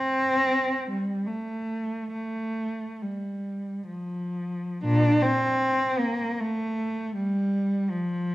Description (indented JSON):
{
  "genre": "classical, free, expressive piece for unaccompanied cello",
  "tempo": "54-83 BPM",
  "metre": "3/4",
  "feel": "rubato",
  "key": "unclear",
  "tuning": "A4 = 445 Hz",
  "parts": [
    { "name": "dark cello", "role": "solo", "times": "0.0-8.3 s", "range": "Bb2 to D4", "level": "-24 LUFS", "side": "equal", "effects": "none" }
  ],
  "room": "wet recital hall reverb, RT60 1.4 s",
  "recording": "none",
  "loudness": "-24 LUFS",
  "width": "side -17 dB against mid",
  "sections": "0.0-4.9 A section; 4.9-8.3 B section",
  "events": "none",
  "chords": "none"
}